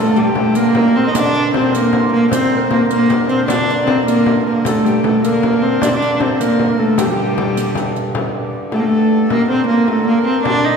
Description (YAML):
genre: medieval dance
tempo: 103 BPM (dotted quarters)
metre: 6/8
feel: straight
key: G minor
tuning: A4 = 440 Hz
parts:
  - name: rich viola da gamba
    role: melody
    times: 0.0-10.8 s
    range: F3 to Eb4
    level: -15 LUFS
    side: equal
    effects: none
  - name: bright reedy tenor recorder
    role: second line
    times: 0.0-10.8 s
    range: G4 to D5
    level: -22 LUFS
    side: left 4 dB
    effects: none
  - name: hammered dulcimer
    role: second line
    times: 0.0-10.8 s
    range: G4 to Eb5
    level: -23 LUFS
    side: right 3 dB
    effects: none
  - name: warm hurdy-gurdy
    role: drone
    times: 0.0-10.8 s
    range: G2 to D3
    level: -26 LUFS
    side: right 2 dB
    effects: none
  - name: riq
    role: percussion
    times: 0.2-8.1 s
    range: none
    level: -28 LUFS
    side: right 4 dB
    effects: none
  - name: frame drum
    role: percussion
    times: 0.4-10.7 s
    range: none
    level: -22 LUFS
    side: left 3 dB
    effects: none
room: wet concert hall reverb, RT60 2.0 s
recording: heard from further back in the room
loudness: -13 LUFS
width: side -6 dB against mid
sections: 0.0-8.1 A section; 8.1-10.8 B section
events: none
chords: none